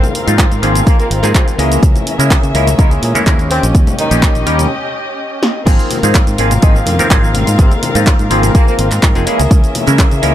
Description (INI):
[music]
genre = filtered disco house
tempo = 125 BPM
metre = 4/4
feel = straight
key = Ab major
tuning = A4 = 439 Hz
[part]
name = warm horn section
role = melody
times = 0.0-8.7 s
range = C3 to Eb4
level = -21 LUFS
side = equal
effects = sidechain pumping, low-pass filter, ping-pong delay
[part]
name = muted studio string section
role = sustained chords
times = 0.0-10.3 s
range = C4 to F5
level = -21 LUFS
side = left 2 dB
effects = sidechain pumping, low-pass filter
[part]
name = direct-recorded clean electric guitar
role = riff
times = 0.0-10.3 s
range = Eb3 to Ab4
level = -22 LUFS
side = equal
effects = sidechain pumping, low-pass filter
[part]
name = punchy analog drum machine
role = drums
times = 0.0-10.3 s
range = crash cymbal, handclaps, hi-hat, shaker, snare drum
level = -19 LUFS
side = right 1 dB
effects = sidechain pumping on hats, sidechain pumping on perc, sidechain pumping on cymbals
[part]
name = congas and maracas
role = percussion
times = 0.0-10.2 s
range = none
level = -25 LUFS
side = left 4 dB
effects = none
[part]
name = clav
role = accompaniment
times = 0.3-10.3 s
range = F3 to Eb5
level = -17 LUFS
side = equal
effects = phaser, sidechain pumping, low-pass filter
[part]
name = fingered electric bass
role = bass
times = 0.3-10.3 s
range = F1 to Db3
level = -15 LUFS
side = equal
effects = sidechain pumping, low-pass filter
[part]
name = electronic kick drum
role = drums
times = 0.4-10.1 s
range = none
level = -10 LUFS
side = equal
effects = overdrive
[sound]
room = little or no reverb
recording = none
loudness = -9 LUFS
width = side -12 dB against mid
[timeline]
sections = 0.0-5.7 A section; 5.7-10.3 B section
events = break 4.7-5.7; drum fill 5.4; drop 5.7-10.3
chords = 0.0 Ab69; 1.6 Dbm6; 3.5 Eb7; 5.7 Ab69; 9.3 Dbm6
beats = 0.39 0.87 1.35 | 1.83 2.31 2.79 3.27 | 3.75 4.23 4.71 5.19 | 5.67 6.15 6.63 7.11 | 7.59 8.07 8.55 9.03 | 9.51 9.99